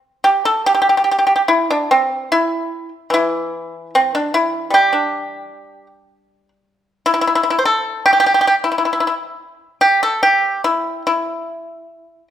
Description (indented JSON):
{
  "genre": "chinese traditional, Chinese solo plucked strings",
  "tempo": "70-78 BPM",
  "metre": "4/4",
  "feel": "rubato",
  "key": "unclear",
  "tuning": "A4 = 441 Hz",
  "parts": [
    { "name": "pipa", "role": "solo", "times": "0.2-12.3 s", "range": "E3 to C5", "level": "-14 LUFS", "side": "equal", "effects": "none" }
  ],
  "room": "moderate large studio reverb, RT60 1.4 s",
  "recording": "band playing live in one room",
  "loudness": "-14 LUFS",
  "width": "side -10 dB against mid",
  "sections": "0.0-12.3 A section",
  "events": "none",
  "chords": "none"
}